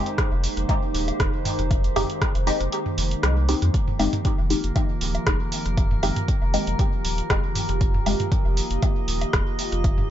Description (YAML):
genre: dub techno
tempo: 118 BPM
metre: 4/4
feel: swing 53% on 16ths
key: F minor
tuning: A4 = 439 Hz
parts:
  - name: warbly tape-like pad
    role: sustained chords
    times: 0.0-10.1 s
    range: Eb3 to C5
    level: -31 LUFS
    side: right 1 dB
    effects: chorus, built-in reverb, phaser, sidechain pumping
  - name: filtered dub chord stab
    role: stabs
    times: 0.0-8.2 s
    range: Ab3 to G4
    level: -28 LUFS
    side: left 2 dB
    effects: phaser, dub echo
  - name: drifting glass-harmonics texture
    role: texture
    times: 0.0-10.1 s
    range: Bb3 to Eb5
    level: -34 LUFS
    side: equal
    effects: chorus, built-in reverb, sidechain pumping
  - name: punchy analog drum machine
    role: drums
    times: 0.1-10.0 s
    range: hi-hat, rim click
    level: -29 LUFS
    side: right 1 dB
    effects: dub echo
  - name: electronic kick drum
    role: drums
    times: 0.2-10.0 s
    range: none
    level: -23 LUFS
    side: equal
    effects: none
  - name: warm sub bass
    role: bass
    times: 0.3-10.0 s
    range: Eb1 to F2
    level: -25 LUFS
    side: equal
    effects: sidechain pumping
  - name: electronic woodblock and toms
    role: percussion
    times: 0.7-10.1 s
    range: none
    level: -31 LUFS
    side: right 2 dB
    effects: overdrive, sidechain pumping on toms, sidechain pumping on perc, dub echo
room: little or no reverb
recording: nothing above 7.6 kHz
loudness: -20 LUFS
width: side -11 dB against mid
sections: 0.0-3.7 A section; 3.7-10.1 A section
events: kick drops out 2.7-3.7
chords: 0.0 Fm9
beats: 0.18 0.69 1.20 | 1.71 2.22 2.72 3.23 | 3.74 4.25 4.76 5.27 | 5.78 6.28 6.79 7.30 | 7.81 8.32 8.83 9.33 | 9.84